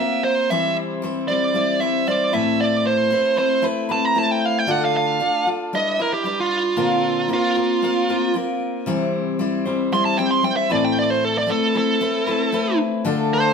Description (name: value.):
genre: rock.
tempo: 115 BPM.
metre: 4/4.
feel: straight.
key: unclear.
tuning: A4 = 443 Hz.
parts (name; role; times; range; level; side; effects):
bluesy overdriven lead guitar; melody; 0.0-13.5 s; F4 to C6; -20 LUFS; right 3 dB; distortion.
picked steel-string acoustic guitar; accompaniment; 0.0-13.5 s; A2 to C5; -21 LUFS; left 3 dB; none.
room: moderate stone room reverb, RT60 1.0 s.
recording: band playing live in one room.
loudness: -18 LUFS.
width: side -6 dB against mid.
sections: 0.0-13.5 A section.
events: lead electric guitar solo 0.0-13.5.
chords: 0.5 C; 2.3 Amadd9; 4.7 Dm; 5.7 G6; 6.8 Bbadd9; 8.9 C; 10.7 Amadd9.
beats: | 0.50 1.02 1.54 2.07 | 2.59 3.11 3.64 4.16 | 4.68 5.21 5.73 6.25 | 6.78 7.30 7.83 8.35 | 8.87 9.39 9.92 10.44 | 10.96 11.49 12.01 12.53 | 13.06.